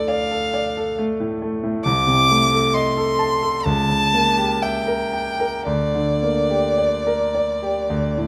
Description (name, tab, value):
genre	classical, romantic duo for violin and grand piano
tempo	53-70 BPM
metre	4/4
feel	rubato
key	G minor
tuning	A4 = 440 Hz
part	rich violin	melody	0.0-8.3 s	D5 to D6	-22 LUFS	equal	none
part	clear concert grand piano	accompaniment	0.0-8.3 s	C2 to A5	-23 LUFS	equal	none
room	moderate recital hall reverb, RT60 1.4 s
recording	none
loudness	-20 LUFS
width	mono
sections	0.0-8.3 A section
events	none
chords	0.0 Dm; 1.9 Adim/C; 3.7 C#dim7; 5.7 Gm/D